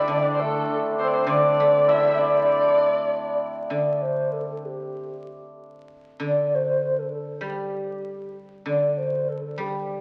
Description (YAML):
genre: chinese traditional, Chinese chamber ensemble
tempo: 98 BPM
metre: 2/4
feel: rubato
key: D shang mode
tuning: A4 = 440 Hz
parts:
  - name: mellow hollow xiao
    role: melody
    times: 0.0-10.0 s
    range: G4 to E5+20c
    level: -25 LUFS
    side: equal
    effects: none
  - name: hammered dulcimer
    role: second line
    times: 0.0-5.9 s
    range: A3 to E4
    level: -29 LUFS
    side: equal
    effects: none
  - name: warm erhu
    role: second line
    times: 0.0-3.4 s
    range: A4 to E5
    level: -30 LUFS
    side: equal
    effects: none
  - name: guzheng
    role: accompaniment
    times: 0.0-10.0 s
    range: D3 to D4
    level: -35 LUFS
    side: equal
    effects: none
room: wet concert hall reverb, RT60 2.3 s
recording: very old 78 rpm record, vinyl crackle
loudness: -23 LUFS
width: mono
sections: 0.0-3.7 A section; 3.7-10.0 B section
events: none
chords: none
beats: | 0.10 0.70 | 1.30 1.89 | 2.50 3.11 | 3.72 4.34 | 4.97 5.59 | 6.20 6.81 | 7.42 8.03 | 8.65 9.28 | 9.90